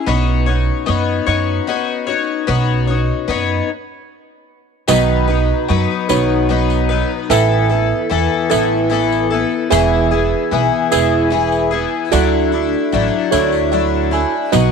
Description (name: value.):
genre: folk rock and heartland rock.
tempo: 50 BPM (dotted quarters).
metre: 6/8.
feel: straight.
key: unclear.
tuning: A4 = 440 Hz.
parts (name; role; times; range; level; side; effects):
picked twelve-string acoustic guitar; accompaniment; 0.0-14.7 s; E2 to C#5; -17 LUFS; left 8 dB; wide subtle chorus.
mellow tonewheel organ; sustained chords; 0.1-14.7 s; C#4 to B4; -28 LUFS; left 9 dB; none.
upright bass; bass; 0.1-14.7 s; E1 to F#2; -19 LUFS; right 3 dB; none.
reed electric piano; accompaniment; 4.9-14.7 s; D#4 to G#5; -18 LUFS; right 15 dB; none.
tambourine; percussion; 4.9-14.7 s; none; -25 LUFS; right 18 dB; none.
room: light reverb, studio ambience.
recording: 1960s-style stereo with parts hard left and right.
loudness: -14 LUFS.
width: side -6 dB against mid.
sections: 0.0-4.9 A section; 4.9-14.7 B section.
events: stop 3.7-4.9; reed electric piano fill 13.3-14.5.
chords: 0.1 Badd9; 7.3 Asus2; 9.7 E; 12.1 Dadd9.